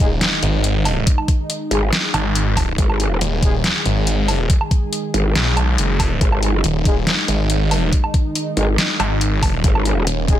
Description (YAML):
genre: heavy wobble dubstep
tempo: 140 BPM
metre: 4/4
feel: half-time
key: unclear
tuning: A4 = 435 Hz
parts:
  - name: lush unison pad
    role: sustained chords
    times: 0.0-10.4 s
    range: D#3 to G#4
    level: -26 LUFS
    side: equal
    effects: chorus, sidechain pumping
  - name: dark brass ensemble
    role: stabs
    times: 0.0-3.5, 6.9-10.4 s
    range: G#3 to G#4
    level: -27 LUFS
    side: left 4 dB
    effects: ping-pong delay
  - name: snarling distorted saw bass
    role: bass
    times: 0.0-10.4 s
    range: D#1 to B1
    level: -18 LUFS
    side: equal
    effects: distortion, overdrive
  - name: dubstep drum kit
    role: drums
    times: 0.0-10.4 s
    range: hi-hat, snare drum, woodblock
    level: -21 LUFS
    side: equal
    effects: none
  - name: electronic kick drum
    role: drums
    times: 0.0-10.4 s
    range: none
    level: -16 LUFS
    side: equal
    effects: overdrive
  - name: sub drop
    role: sound effects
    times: 0.3-1.1 s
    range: none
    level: -36 LUFS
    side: equal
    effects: none
  - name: growl bass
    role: bass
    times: 1.7-10.1 s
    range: G#1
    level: -18 LUFS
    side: equal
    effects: chorus, overdrive
room: little or no reverb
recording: none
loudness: -15 LUFS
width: side -12 dB against mid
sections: 0.0-10.4 A section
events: impact 0.0-1.1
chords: 0.0 G#5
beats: 0.21 0.64 | 1.07 1.50 1.93 2.35 | 2.78 3.21 3.64 4.07 | 4.50 4.93 5.36 5.78 | 6.21 6.64 7.07 7.50 | 7.93 8.36 8.78 9.21 | 9.64 10.07